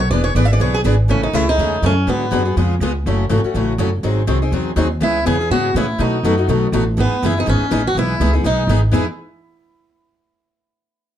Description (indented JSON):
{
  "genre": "acoustic string swing (jazz manouche)",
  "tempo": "245 BPM",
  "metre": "4/4",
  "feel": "swing 55% on 8ths",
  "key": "E major",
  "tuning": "A4 = 444 Hz",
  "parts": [
    { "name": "picked swing-style acoustic guitar", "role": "melody", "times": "0.0-2.5, 5.0-9.1 s", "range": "B3 to E5", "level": "-20 LUFS", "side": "right 1 dB", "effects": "none" },
    { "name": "upright bass", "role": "bass", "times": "0.0-9.1 s", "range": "E1 to B2", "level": "-18 LUFS", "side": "equal", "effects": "none" },
    { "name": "picked steel-string acoustic guitar", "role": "accompaniment", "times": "0.1-9.0 s", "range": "B2 to G#4", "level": "-21 LUFS", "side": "left 5 dB", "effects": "none" },
    { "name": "picked steel-string acoustic guitar", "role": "accompaniment", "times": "0.1-9.1 s", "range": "B2 to B4", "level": "-25 LUFS", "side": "right 6 dB", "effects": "none" }
  ],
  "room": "moderate studio reverb, RT60 0.6 s",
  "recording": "dark, warm production",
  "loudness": "-14 LUFS",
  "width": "side -10 dB against mid",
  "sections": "0.0-1.1 A section; 1.1-8.9 B section",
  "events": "steel-string acoustic guitar solo 0.0-1.1",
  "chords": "0.1 E7; 1.1 Amaj7; 2.1 G#m7b5; 2.6 C#7; 3.0 F#m7; 4.0 G#7; 5.0 C#m7; 6.0 B7; 7.0 Emaj7"
}